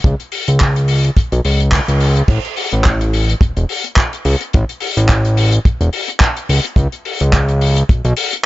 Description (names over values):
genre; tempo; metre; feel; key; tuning
nu-disco, nu disco; 107 BPM; 4/4; swing 56% on 16ths; A major; A4 = 437 Hz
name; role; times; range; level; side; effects
fat analog bass; bass; 0.0-8.1 s; E1 to C#2; -13 LUFS; equal; none
damped 70s drum kit; drums; 0.0-8.4 s; crash cymbal, handclaps, hi-hat; -19 LUFS; left 1 dB; small room ambience
kick drum; drums; 0.0-8.0 s; none; -13 LUFS; equal; small room ambience
room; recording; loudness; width
little or no reverb; nothing above 7.6 kHz; -12 LUFS; side -17 dB against mid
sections
0.0-2.3 A section; 2.3-8.5 B section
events
band accent 1.7; drop 2.3-8.5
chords
none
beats
| 0.04 0.61 1.17 1.73 | 2.29 2.85 3.41 3.97 | 4.53 5.09 5.65 6.21 | 6.77 7.33 7.90